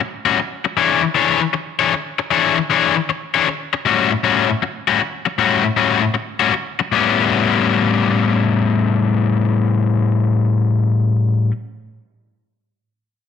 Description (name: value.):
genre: blues.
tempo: 156 BPM.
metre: 4/4.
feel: swing 67% on 8ths.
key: A mixolydian.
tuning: A4 = 437 Hz.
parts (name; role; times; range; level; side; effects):
cranked stack guitar; solo; 0.0-11.5 s; A2 to C#5; -15 LUFS; left 5 dB; overdrive.
room: wet echo chamber reverb, RT60 1.6 s, digital ambience.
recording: none.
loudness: -15 LUFS.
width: side -8 dB against mid.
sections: 0.0-6.9 A section; 6.9-10.0 B section.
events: none.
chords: 0.0 A6; 0.8 E6; 3.9 A6; 6.9 A9.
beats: 0.01 0.39 | 0.78 1.16 1.55 1.93 | 2.32 2.70 3.08 3.47 | 3.85 4.24 4.62 5.01 | 5.39 5.78 6.16 6.55 | 6.93 7.32 7.70 8.08 | 8.47 8.85 9.24 9.62.